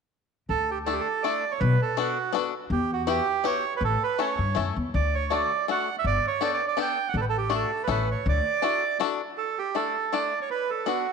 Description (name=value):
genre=musette waltz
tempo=162 BPM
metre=3/4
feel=swing 54% on 8ths, rubato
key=D major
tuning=A4 = 440 Hz
part: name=bandoneon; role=melody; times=0.5-11.1 s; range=F#4 to G5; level=-26 LUFS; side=right 7 dB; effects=slapback echo
part: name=upright bass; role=bass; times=0.5-8.4 s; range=G1 to G2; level=-27 LUFS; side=left 2 dB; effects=none
part: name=bluegrass banjo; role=accompaniment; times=0.9-11.1 s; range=A3 to A4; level=-29 LUFS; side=left 12 dB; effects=none
room=moderate echo chamber reverb, RT60 2.2 s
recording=1960s-style stereo with parts hard left and right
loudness=-24 LUFS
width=side -5 dB against mid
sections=0.5-9.4 A section; 9.4-11.1 A section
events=none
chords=0.5 Dsus2; 1.6 Bm7; 2.7 Emadd9; 3.8 A; 4.9 D; 6.0 Gadd9; 7.1 D/A; 7.9 Aadd9; 8.3 Dadd9; 9.4 Dsus2; 10.5 Bm7